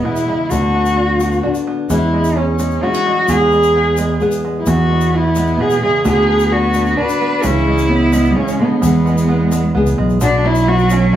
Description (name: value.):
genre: acoustic folk duo or small band.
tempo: 130 BPM.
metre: 3/4.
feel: straight.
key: unclear.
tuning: A4 = 436 Hz.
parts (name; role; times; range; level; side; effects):
dark cello; melody; 0.0-11.2 s; B3 to B4; -16 LUFS; equal; none.
nylon-string guitar; accompaniment; 0.0-11.2 s; E2 to G#4; -20 LUFS; left 3 dB; none.
open-back banjo; arpeggios; 0.0-11.2 s; D3 to F#4; -24 LUFS; right 6 dB; none.
tube shaker; percussion; 0.2-11.0 s; none; -34 LUFS; left 5 dB; none.
fingered electric bass; bass; 0.5-11.1 s; B1 to E2; -17 LUFS; right 1 dB; none.
warm cello; second line; 4.7-11.2 s; F#3 to E4; -20 LUFS; right 3 dB; none.
room: light reverb.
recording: small room reverb.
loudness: -12 LUFS.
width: side -11 dB against mid.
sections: 0.0-10.2 A section.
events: none.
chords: 0.0 E; 0.5 Bm/D; 1.9 C#m/E; 6.1 Bm/D; 7.4 C#m; 8.8 E; 10.2 Bmadd9.